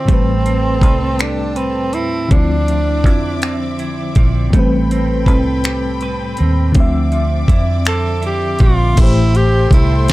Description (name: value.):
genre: slow six-eight R&B.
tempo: 54 BPM (dotted quarters).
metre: 6/8.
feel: straight.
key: A minor.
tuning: A4 = 444 Hz.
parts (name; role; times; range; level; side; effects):
breathy tenor saxophone; melody; 0.0-3.8, 7.9-10.1 s; C4 to A4; -19 LUFS; right 1 dB; none.
FM electric piano with tremolo; accompaniment; 0.0-10.1 s; A2 to E5; -20 LUFS; left 2 dB; none.
rich studio string section; sustained chords; 0.0-10.1 s; C4 to D6; -28 LUFS; equal; none.
clean electric guitar; second line; 0.1-9.6 s; D3 to B4; -25 LUFS; right 6 dB; none.
vintage muted fingered electric bass; bass; 0.1-10.1 s; A1 to F2; -17 LUFS; equal; none.
smooth R&B drum kit; drums; 0.1-10.1 s; crash cymbal, finger snaps, hi-hat, kick drum, snare drum; -13 LUFS; equal; none.
room: little or no reverb.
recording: dark, warm production.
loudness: -12 LUFS.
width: side -18 dB against mid.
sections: 0.0-9.0 A section; 9.0-10.1 B section.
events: none.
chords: 0.1 Am9; 2.3 Dm9; 4.5 Am9; 6.8 Dm9; 9.0 Am7.